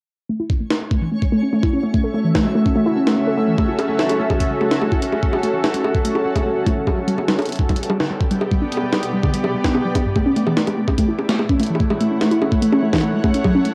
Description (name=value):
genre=IDM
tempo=146 BPM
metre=4/4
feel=straight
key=unclear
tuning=A4 = 440 Hz
part: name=granular cloud pad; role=sustained chords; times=1.9-13.7 s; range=A3 to G5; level=-25 LUFS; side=equal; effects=built-in reverb, cassette tape, plate reverb
part: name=warbly dusty pluck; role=arpeggios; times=0.3-13.7 s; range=G2 to A4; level=-22 LUFS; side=equal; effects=chorus, cassette tape, analog delay
part: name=twinkling granular texture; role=texture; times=0.8-3.6 s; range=C#4 to C#5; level=-36 LUFS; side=equal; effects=built-in reverb, cassette tape, plate reverb
part: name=electronic kick drum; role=drums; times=0.5-13.5 s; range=none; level=-23 LUFS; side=equal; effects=none
part: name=jungle sampler-style drum kit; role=drums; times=0.7-13.7 s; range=bongos, hi-hat, snare drum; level=-26 LUFS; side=equal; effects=analog delay
room=moderate studio reverb, RT60 0.5 s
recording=home recording on cassette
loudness=-19 LUFS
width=mono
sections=0.3-3.6 A section; 3.6-13.7 B section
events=filter sweep on synth pluck 0.3-3.6; kick drops out 2.8-3.6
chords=0.3 A6; 6.9 G; 10.2 A6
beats=| 0.29 0.71 1.12 1.53 | 1.94 2.35 2.76 3.17 | 3.58 3.99 4.41 4.82 | 5.23 5.64 6.05 6.46 | 6.87 7.28 7.69 8.10 | 8.52 8.93 9.34 9.75 | 10.16 10.57 10.98 11.39 | 11.80 12.21 12.62 13.04 | 13.45